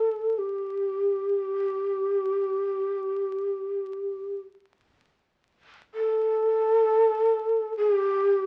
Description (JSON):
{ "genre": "japanese traditional, Japanese chamber music", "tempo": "free time", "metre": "none", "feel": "none", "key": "unclear", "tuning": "A4 = 440 Hz", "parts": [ { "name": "breathy mellow shakuhachi", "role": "solo", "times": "0.0-8.5 s", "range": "G4 to A4", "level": "-26 LUFS", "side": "equal", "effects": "none" } ], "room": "moderate studio reverb, RT60 0.6 s", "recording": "very old 78 rpm record, vinyl crackle", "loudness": "-26 LUFS", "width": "mono", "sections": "0.0-8.5 A section", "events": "none", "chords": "none" }